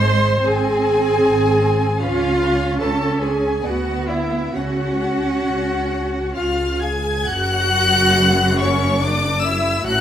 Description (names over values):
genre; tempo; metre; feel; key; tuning
classical, slow romantic movement for string orchestra; 64-77 BPM; 3/4; rubato; unclear; A4 = 445 Hz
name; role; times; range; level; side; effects
rich chamber violin section; melody; 0.0-10.0 s; B4 to G#6; -21 LUFS; left 4 dB; none
rich chamber violin section; second line; 0.0-10.0 s; C#5 to B#5; -25 LUFS; left 3 dB; none
clear chamber viola section; accompaniment; 0.0-10.0 s; C#4 to B#4; -20 LUFS; right 1 dB; none
rich chamber double bass section; bass; 0.0-10.0 s; F#1 to D2; -23 LUFS; right 1 dB; none
warm chamber cello section; bass; 0.0-10.0 s; F#2 to C#4; -24 LUFS; right 2 dB; none
room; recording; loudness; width
moderate scoring stage reverb, RT60 1.5 s; none; -16 LUFS; side -10 dB against mid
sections
0.0-7.3 A section; 7.3-10.0 B section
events
none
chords
0.0 G#; 2.0 C#; 3.7 D; 4.6 C#sus4; 6.4 C#; 7.3 Dmaj9/F#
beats
0.44 1.23 | 2.02 2.81 3.65 | 4.56 5.48 6.37 | 7.28 8.16 9.03 | 9.86